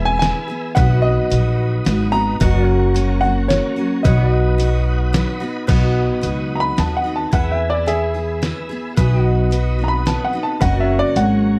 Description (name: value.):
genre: honky-tonk and classic country.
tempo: 110 BPM.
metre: 3/4.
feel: straight.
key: B major.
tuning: A4 = 440 Hz.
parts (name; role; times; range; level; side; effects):
warm upright piano; melody; 0.0-11.6 s; G#4 to B5; -24 LUFS; equal; none.
picked steel-string acoustic guitar; accompaniment; 0.0-11.6 s; F#2 to G#4; -25 LUFS; equal; none.
tonewheel organ; accompaniment; 0.0-11.6 s; F#4 to B5; -34 LUFS; equal; slow rotary speaker, chorus vibrato.
pedal steel guitar; sustained chords; 0.0-11.6 s; A#4 to G#5; -31 LUFS; equal; none.
upright bass; bass; 0.0-11.6 s; E1 to E2; -20 LUFS; equal; none.
trip hop sampler-style drum kit; drums; 0.2-11.3 s; crash cymbal, hi-hat, kick drum, snare drum; -22 LUFS; equal; none.
room: little or no reverb.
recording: dry, close 1970s-style studio recording.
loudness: -18 LUFS.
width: mono.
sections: 0.0-5.7 A section; 5.7-11.6 B section.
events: tonewheel organ fill 4.6-5.7; upright piano solo 5.7-11.6.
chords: 0.0 E; 0.8 B; 2.4 F#; 4.0 B; 7.3 E; 9.0 B; 10.6 F#.